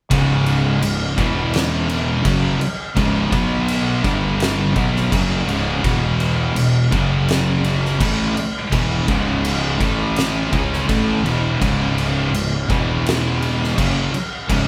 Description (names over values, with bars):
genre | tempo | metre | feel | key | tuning
stoner and doom metal | 83 BPM | 4/4 | straight | C# minor | A4 = 435 Hz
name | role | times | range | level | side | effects
sludgy distorted guitar | riff | 0.1-14.7 s | C#2 to C#4 | -26 LUFS | equal | overdrive
thick fuzz guitar | riff | 0.1-14.7 s | C#2 to C#4 | -25 LUFS | equal | distortion
thick fuzz guitar | riff | 0.1-14.7 s | C#2 to C#4 | -27 LUFS | equal | none
fuzz fingered electric bass | bass | 0.1-14.7 s | C#1 to C#2 | -26 LUFS | equal | overdrive
oversized low-tuned drum kit | drums | 0.1-14.7 s | crash cymbal, kick drum, snare drum | -24 LUFS | equal | none
room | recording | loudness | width
light reverb | band playing live in one room | -19 LUFS | mono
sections
0.1-14.7 A section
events
none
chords
0.1 C#5; 1.2 E5; 2.2 C#5; 3.3 B5; 4.0 G5; 4.8 C#5; 5.8 E5; 6.9 F#5; 8.0 E5; 9.1 C#5; 9.8 A5; 10.5 E5; 11.6 C#5; 12.7 E5; 13.8 C#5